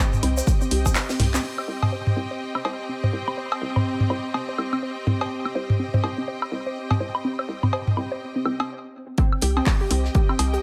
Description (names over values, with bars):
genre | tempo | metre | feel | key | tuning
minimal techno | 124 BPM | 4/4 | swing 60% on 16ths | C minor | A4 = 441 Hz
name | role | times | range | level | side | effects
resonant blip pluck | riff | 0.0-10.6 s | C4 to C5 | -32 LUFS | equal | chorus, sidechain pumping, dub echo
clear studio string section | texture | 0.0-10.6 s | C4 to G5 | -34 LUFS | equal | sidechain pumping
electronic toms, woodblock and cowbell | percussion | 0.1-10.5 s | none | -27 LUFS | equal | digital delay
tube shaker | percussion | 0.1-1.4 s | none | -36 LUFS | equal | none
hollow knocking FM bass | bass | 0.2-10.6 s | C2 | -28 LUFS | equal | sidechain pumping, high-pass filter
punchy analog drum machine | drums | 0.2-1.4, 9.4-10.5 s | handclaps, hi-hat | -30 LUFS | equal | low-pass filter on snare, low-pass filter on hats, low-pass filter on room
tight metal drum kit | drums | 0.2-1.4, 9.2-10.6 s | hi-hat, snare drum | -39 LUFS | equal | sidechain pumping on hats, high-pass filter on hats, high-pass filter on snare, high-pass filter on room
electronic kick drum | drums | 0.5-0.9, 9.2-10.3 s | none | -23 LUFS | equal | none
room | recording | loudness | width
light reverb, small room reverb | none | -24 LUFS | mono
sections
0.0-1.4 A section; 1.4-9.2 B section; 9.2-10.6 C section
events
filter sweep on synth pluck 0.0-1.4; kick drops out 1.0-1.4; stop 8.7-9.2; drop 9.2-10.6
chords
0.0 Cm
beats
0.47 0.95 | 1.44 1.92 2.41 2.89 | 3.38 3.86 4.34 4.83 | 5.31 5.79 6.28 6.76 | 7.25 7.73 8.21 8.70 | 9.18 9.66 10.15